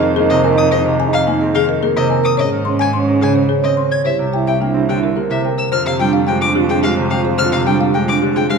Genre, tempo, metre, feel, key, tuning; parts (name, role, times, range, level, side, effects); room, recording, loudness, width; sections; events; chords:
classical, minimalist pattern music; 108 BPM; 3/4; straight; A4 = 442 Hz
folk marimba with medium mallets; melody; 0.0-8.6 s; G4 to C6; -21 LUFS; left 10 dB
mellow French horn; second line; 0.0-8.5 s; Db4 to F4; -20 LUFS; right 4 dB
Celtic harp; accompaniment; 0.0-8.6 s; C3 to Eb4; -19 LUFS; left 1 dB
rich cello; bass; 0.0-8.6 s; C2 to Ab2; -22 LUFS; right 4 dB
vibraphone with soft mallets; arpeggios; 0.2-8.5 s; Db4 to Db5; -20 LUFS; right 8 dB
warm violin; arpeggios; 0.3-8.6 s; Eb5 to Ab6; -23 LUFS; left 4 dB
moderate recital hall reverb, RT60 1.5 s; -13 LUFS; side -5 dB against mid
0.0-5.7 A section; 5.7-8.6 B section
0.0 Fm7; 2.4 Absus4; 4.1 C7; 5.7 Fmadd9